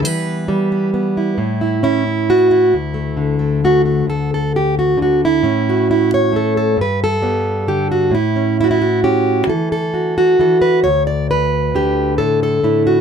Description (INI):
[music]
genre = folk, solo fingerstyle acoustic guitar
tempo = 134 BPM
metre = 3/4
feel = straight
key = unclear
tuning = A4 = 438 Hz
[part]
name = fingerpicked plugged-in steel-string acoustic guitar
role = solo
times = 0.0-13.0 s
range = D2 to D5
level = -13 LUFS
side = equal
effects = none
[sound]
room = light reverb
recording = close, detailed microphones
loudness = -13 LUFS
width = side -7 dB against mid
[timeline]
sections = 0.0-4.1 A section; 4.1-13.0 B section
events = none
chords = 0.0 Em; 1.4 A; 2.7 Dadd9; 4.1 N.C.; 5.4 A; 6.8 G; 8.1 A; 9.5 Esus2; 10.8 N.C.; 12.2 Asus4